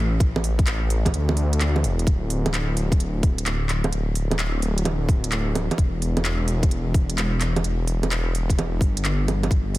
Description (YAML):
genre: future garage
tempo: 129 BPM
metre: 4/4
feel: swing 66% on 16ths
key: unclear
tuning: A4 = 440 Hz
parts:
  - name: swelling detuned saw bass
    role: bass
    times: 0.0-9.8 s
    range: D1 to D2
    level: -23 LUFS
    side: equal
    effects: sidechain pumping
  - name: electronic kick drum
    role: drums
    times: 0.2-9.6 s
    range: none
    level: -20 LUFS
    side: equal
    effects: none
  - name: organic electronic drum kit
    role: drums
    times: 0.2-9.8 s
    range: bongos, handclaps, hi-hat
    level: -27 LUFS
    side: right 2 dB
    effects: none
room: little or no reverb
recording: dense, heavily limited modern master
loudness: -20 LUFS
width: side -17 dB against mid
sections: 0.0-2.1 A section; 2.1-9.8 A section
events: kick drops out 1.1-2.1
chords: none